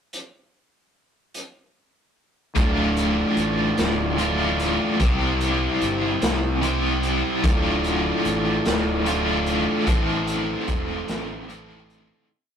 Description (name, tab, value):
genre	psychedelic rock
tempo	49 BPM (dotted quarters)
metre	6/8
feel	straight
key	D minor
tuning	A4 = 436 Hz
part	raw garage drum kit	drums	0.1-12.1 s	hi-hat, kick drum, snare drum	-25 LUFS	equal	none
part	biting overdriven guitar	riff	2.5-12.3 s	D2 to C5	-22 LUFS	left 1 dB	tremolo
part	tonewheel organ	sustained chords	2.6-12.3 s	G4 to D6	-32 LUFS	right 5 dB	stopped rotary speaker
part	fuzz fingered electric bass	bass	2.6-12.1 s	D1 to C2	-28 LUFS	equal	overdrive
room	moderate studio reverb, RT60 0.7 s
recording	rough rehearsal-room recording, warm saturation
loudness	-20 LUFS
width	side -8 dB against mid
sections	0.1-2.6 pickup bar; 2.6-12.3 verse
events	fade-out 9.9-12.3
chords	0.1 N.C.; 2.6 Dm; 5.0 C; 7.4 Dm; 9.9 Am